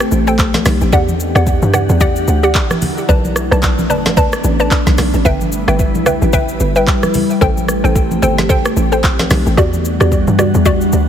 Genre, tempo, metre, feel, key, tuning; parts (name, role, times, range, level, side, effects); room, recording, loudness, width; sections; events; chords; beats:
amapiano; 111 BPM; 4/4; swing 58% on 16ths; A4 = 440 Hz
glassy FM pad; sustained chords; 0.0-11.1 s; E3 to F#5; -18 LUFS; left 1 dB; ensemble chorus, built-in reverb, sidechain pumping
afro-pop drum kit; drums; 0.0-11.1 s; handclaps, hi-hat, kick drum, rim click, shaker, snare drum; -16 LUFS; equal
hollow log drum bass; bass; 0.1-11.1 s; F#1 to G2; -16 LUFS; equal
hollow square pluck; stabs; 0.3-10.8 s; F#4 to A5; -18 LUFS; left 1 dB; chorus, digital delay
congas; percussion; 0.5-10.8 s; -22 LUFS; right 1 dB
light reverb; heavily compressed radio sound; -11 LUFS; side -9 dB against mid
0.0-11.1 A section
0.4 B7; 0.9 Em9; 2.5 F#7; 3.1 Bm7; 5.3 G6; 7.4 Am7; 9.0 B7; 9.6 Em9
0.39 | 0.93 1.47 2.01 2.55 | 3.09 3.63 4.17 4.71 | 5.25 5.79 6.33 6.87 | 7.41 7.95 8.49 9.04 | 9.58 10.12 10.66